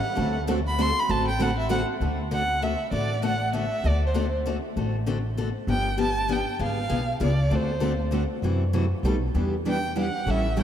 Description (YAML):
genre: acoustic string swing (jazz manouche)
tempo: 196 BPM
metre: 3/4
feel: swing 57% on 8ths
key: D mixolydian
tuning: A4 = 438 Hz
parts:
  - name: warm violin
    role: melody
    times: 0.0-10.6 s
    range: C5 to C6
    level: -28 LUFS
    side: right 1 dB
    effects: none
  - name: picked steel-string acoustic guitar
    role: accompaniment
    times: 0.2-10.6 s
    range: B2 to A4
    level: -29 LUFS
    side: left 5 dB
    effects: none
  - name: picked steel-string acoustic guitar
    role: accompaniment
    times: 0.2-1.8, 7.5-10.6 s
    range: B2 to B4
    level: -30 LUFS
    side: right 4 dB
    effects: none
  - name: upright bass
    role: bass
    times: 0.2-10.6 s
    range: G1 to F#2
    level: -27 LUFS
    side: equal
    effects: none
room: wet cathedral reverb, RT60 4.9 s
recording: in a vast, echoing space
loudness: -23 LUFS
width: side -10 dB against mid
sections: 0.0-2.0 A section; 2.0-10.6 B section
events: violin solo 0.0-2.0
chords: 0.2 D7; 5.7 G7; 6.6 G#dim7; 7.5 D7; 8.4 F#m7b5; 9.0 Baug7; 9.3 Em7